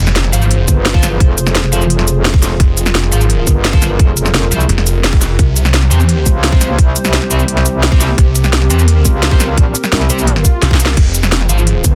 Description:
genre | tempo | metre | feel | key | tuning
dark technical drum and bass | 172 BPM | 4/4 | straight | F minor | A4 = 440 Hz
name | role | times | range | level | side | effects
dark analog pad | sustained chords | 0.0-11.9 s | C4 to C5 | -25 LUFS | equal | chorus, sidechain pumping
snarling distorted saw bass | bass | 0.0-11.8 s | F1 to E2 | -14 LUFS | equal | sidechain pumping
impact and swell | sound effects | 0.0-1.2, 10.4-11.0 s | none | -27 LUFS | equal | none
drum and bass drum kit | drums | 0.1-11.9 s | cabasa, crash cymbal, hi-hat, snare drum | -18 LUFS | equal | none
thick fuzz guitar | stabs | 0.3-11.6 s | C4 to F5 | -24 LUFS | equal | distortion, digital delay
metallic wobble bass | bass | 0.7-11.9 s | F1 to Db2 | -17 LUFS | equal | chorus
electronic kick drum | drums | 0.7-11.9 s | none | -12 LUFS | equal | none
room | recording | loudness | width
little or no reverb | dense, heavily limited modern master | -12 LUFS | mono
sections
0.0-11.9 A section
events
impact 0.0-1.2; swell 10.4-11.0; drum fill 10.6-11.0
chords
0.0 Fm; 5.4 C; 11.0 Fm

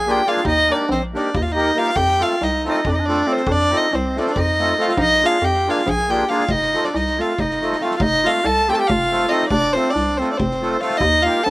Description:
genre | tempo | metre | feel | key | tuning
balkan folk, Balkan wedding band | 278 BPM (eighths) | 7/8 | straight | F mixolydian | A4 = 440 Hz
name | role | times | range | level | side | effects
dark violin | melody | 0.0-11.5 s | C5 to A5 | -19 LUFS | equal | slapback echo
breathy clarinet | second line | 0.0-11.5 s | C4 to A4 | -23 LUFS | right 2 dB | slapback echo
hollow knocking FM bass | bass | 0.0-11.5 s | F1 to F2 | -23 LUFS | equal | none
accordion | accompaniment | 0.1-11.4 s | A3 to Bb4 | -23 LUFS | equal | light tremolo tuning
soft-mallet drum kit | percussion | 0.1-11.5 s | kick drum, snare drum | -30 LUFS | equal | none
room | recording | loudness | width
little or no reverb | none | -16 LUFS | side -20 dB against mid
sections
0.0-8.0 A section; 8.0-11.5 B section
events
none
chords
0.5 Eb; 2.0 F; 5.0 Bb7; 6.5 F

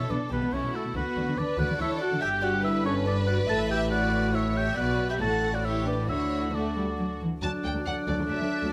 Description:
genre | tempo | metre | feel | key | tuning
quick classical-period movement for symphony orchestra | 140 BPM | 3/4 | straight | D major | A4 = 439 Hz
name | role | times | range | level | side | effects
rich studio violin section | melody | 0.0-8.7 s | E4 to A5 | -38 LUFS | equal | none
dark chamber violin section | second line | 0.0-8.7 s | F#4 to F#5 | -38 LUFS | equal | none
warm oboe | second line | 0.0-8.7 s | A4 to A5 | -34 LUFS | equal | none
dark studio viola section | accompaniment | 0.0-8.7 s | F#3 to A4 | -36 LUFS | equal | none
warm studio cello section | bass | 0.0-8.7 s | D2 to A3 | -33 LUFS | equal | none
rich studio double bass section | bass | 0.1-8.3 s | G1 to D2 | -35 LUFS | equal | none
silver concert flute | second line | 7.4-8.7 s | F#6 | -37 LUFS | equal | none
mellow French horn section | sustained chords | 7.4-8.7 s | F#3 to D4 | -35 LUFS | equal | none
room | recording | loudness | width
moderate recital hall reverb, RT60 1.4 s | close, detailed microphones | -27 LUFS | mono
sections
0.0-7.4 A section; 7.4-8.7 A section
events
none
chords
0.0 Bm11; 1.0 Bm/D; 2.2 Gmaj13; 3.5 A; 4.8 Bm; 5.2 D/A; 6.1 D

